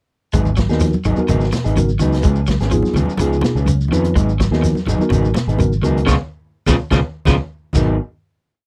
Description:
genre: afrobeat.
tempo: 125 BPM.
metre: 4/4.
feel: straight.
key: G# dorian.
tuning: A4 = 441 Hz.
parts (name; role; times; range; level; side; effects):
electric guitar at the edge of break-up; arpeggios; 0.3-7.9 s; B2 to G#3; -25 LUFS; equal; analog chorus.
electric guitar at the edge of break-up; stabs; 0.3-8.0 s; E#3 to G#4; -26 LUFS; equal; none.
fingered electric bass; bass; 0.3-8.0 s; G#1 to E#2; -20 LUFS; equal; none.
vintage drum kit; drums; 0.3-7.9 s; crash cymbal, hi-hat, kick drum, snare drum; -22 LUFS; equal; none.
congas; percussion; 0.3-7.9 s; none; -26 LUFS; equal; none.
shekere; percussion; 0.3-7.9 s; none; -26 LUFS; equal; none.
mellow tine electric piano; accompaniment; 0.7-8.0 s; B3 to B4; -24 LUFS; equal; none.
room: light reverb.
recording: dry, close 1970s-style studio recording.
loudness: -17 LUFS.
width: mono.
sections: 0.3-8.0 groove; 8.0-8.7 final hit.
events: band accent 6.1-8.0; drum fill 7.3-8.0.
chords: 0.3 G#m7; 2.2 C#7; 4.2 G#m7; 6.1 C#7; 7.8 G#m7; 8.0 N.C..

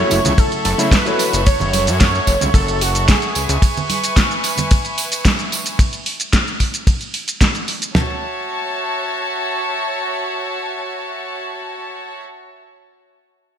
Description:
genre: nu-disco, nu disco.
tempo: 111 BPM.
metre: 4/4.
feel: straight.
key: F# minor.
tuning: A4 = 440 Hz.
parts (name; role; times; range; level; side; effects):
wide unison lead; melody; 0.0-3.6 s; F#4 to C#5; -21 LUFS; right 1 dB; analog chorus, digital delay.
rich chamber violin section; sustained chords; 0.0-12.2 s; F#4 to C#6; -23 LUFS; equal; sidechain pumping.
mellow electric guitar; riff; 0.0-1.4 s; E4 to C#5; -24 LUFS; left 2 dB; lush chorus, digital delay.
fat analog bass; bass; 0.0-3.6 s; F#1 to F#2; -20 LUFS; equal; tube saturation.
barky reed electric piano; accompaniment; 0.1-0.9 s; C#3 to E4; -24 LUFS; equal; overdrive, fast tremolo, digital delay.
pop drum kit; drums; 0.1-7.9 s; hi-hat, ride cymbal, shaker, snare drum; -20 LUFS; right 1 dB; small room ambience, gated reverb.
tambourine and congas; percussion; 0.1-5.8 s; none; -26 LUFS; right 4 dB; none.
damped 70s drum kit; drums; 0.4-8.1 s; kick drum, snare drum, toms; -14 LUFS; equal; small room ambience.
room: light reverb, small room ambience.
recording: bright 1980s-style digital production.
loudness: -15 LUFS.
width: side -9 dB against mid.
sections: 0.0-8.0 A section; 8.0-12.3 B section.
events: drop 0.0-8.0.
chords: 0.0 F#m7; 3.4 C#m7; 8.0 F#m7.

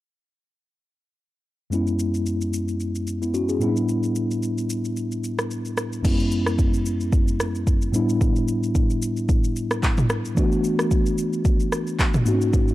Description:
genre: amapiano.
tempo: 111 BPM.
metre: 4/4.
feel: swing 55% on 16ths.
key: unclear.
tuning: A4 = 440 Hz.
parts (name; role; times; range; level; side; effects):
mellow tine electric piano; accompaniment; 1.7-12.7 s; F#2 to G#4; -22 LUFS; left 1 dB; fast stereo tremolo.
deep house drum kit; drums; 1.7-12.7 s; crash cymbal, handclaps, kick drum, rim click, shaker, toms; -22 LUFS; equal; none.
room: little or no reverb.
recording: dark, warm production.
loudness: -20 LUFS.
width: side -16 dB against mid.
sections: 1.7-6.0 A section; 6.0-12.7 B section.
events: none.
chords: 1.7 F#9sus4; 3.6 A9sus4; 6.0 F#9sus4; 7.9 A9sus4; 10.4 E9sus4.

